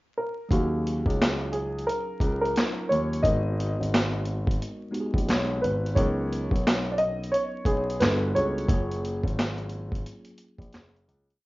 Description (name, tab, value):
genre	lo-fi hip hop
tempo	88 BPM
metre	4/4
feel	swing 61% on 16ths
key	F# major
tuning	A4 = 439 Hz
part	dark upright piano	melody	0.2-9.0 s	F#4 to D#5	-28 LUFS	equal	low-pass filter, tape echo
part	mellow tine electric piano	accompaniment	0.5-11.4 s	F#3 to E#5	-34 LUFS	equal	medium stereo tremolo, low-pass filter
part	dark grand piano	bass	0.5-11.4 s	F#1 to D#2	-29 LUFS	equal	none
part	boom bap sampler-style drum kit	drums	0.5-11.4 s	handclaps, hi-hat, kick drum, snare drum	-26 LUFS	equal	none
room	moderate small room reverb, RT60 0.5 s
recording	rough home demo mix, vinyl crackle, nothing above 7.5 kHz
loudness	-24 LUFS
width	side -20 dB against mid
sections	0.0-0.5 pickup bar; 0.5-11.4 A section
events	fade-out 8.7-11.4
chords	0.0 N.C.; 0.5 D#m11; 3.2 G#m9; 6.0 C#13sus4; 8.0 Gmaj9; 8.7 F#maj9